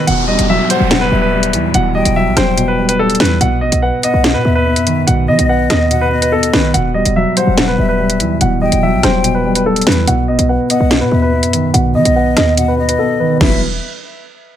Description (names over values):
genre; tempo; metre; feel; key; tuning
hip hop, drill; 144 BPM; 4/4; half-time; E harmonic minor; A4 = 439 Hz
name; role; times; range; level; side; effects
bright concert grand piano; melody; 0.0-13.6 s; A4 to F#5; -17 LUFS; right 1 dB; low-pass filter, digital delay
breathy hollow jazz flute; second line; 0.0-13.6 s; D#5 to G5; -21 LUFS; left 6 dB; digital delay
dark concert grand piano; accompaniment; 0.0-13.6 s; B2 to B4; -16 LUFS; equal; low-pass filter
short 808-style bass; bass; 0.1-13.8 s; E1 to F#3; -17 LUFS; equal; none
drill drum kit; drums; 0.1-13.5 s; crash cymbal, hi-hat, kick drum, rim click, snare drum; -16 LUFS; equal; none
downlifter; sound effects; 0.1-3.4 s; none; -22 LUFS; left 1 dB; none
room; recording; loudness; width
light reverb; none; -11 LUFS; side -10 dB against mid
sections
0.1-13.4 A section; 13.4-14.6 B section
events
filter sweep 0.1-13.4; silent gap 13.0-13.4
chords
0.1 Emadd9; 3.4 B; 6.7 Emadd9; 10.1 B; 13.4 Emadd9